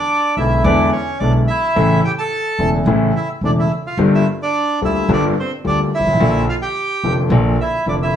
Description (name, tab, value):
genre	tango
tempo	108 BPM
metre	4/4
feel	rubato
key	unclear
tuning	A4 = 440 Hz
part	bandoneon	melody	0.0-8.2 s	C4 to A5	-19 LUFS	right 2 dB	plate reverb
part	clear concert grand piano	accompaniment	0.4-8.1 s	E1 to F4	-17 LUFS	left 2 dB	none
part	upright bass	bass	0.4-8.1 s	E1 to E2	-19 LUFS	right 1 dB	none
room	wet studio reverb, RT60 0.8 s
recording	heard from further back in the room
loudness	-14 LUFS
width	side -9 dB against mid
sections	0.0-8.2 A section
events	none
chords	0.0 E7; 1.8 A; 4.0 Gm7; 6.2 Bb